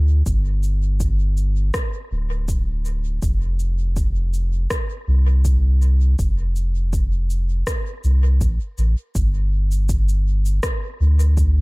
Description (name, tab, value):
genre	ambient dub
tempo	81 BPM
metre	4/4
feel	straight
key	unclear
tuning	A4 = 440 Hz
part	soft dub sub bass	bass	0.0-11.6 s	D1 to D2	-17 LUFS	equal	none
part	electronic cabasa and rim click	drums	0.3-11.5 s	none	-31 LUFS	equal	dub echo
part	electronic kick drum	drums	0.3-11.5 s	none	-23 LUFS	equal	none
room	little or no reverb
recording	echo-heavy mix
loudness	-18 LUFS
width	side -27 dB against mid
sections	0.0-9.2 A section; 9.2-11.6 B section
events	none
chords	none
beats	| 0.26 1.00 1.74 2.48 | 3.22 3.96 4.71 5.45 | 6.19 6.93 7.67 8.41 | 9.15 9.89 10.63 11.37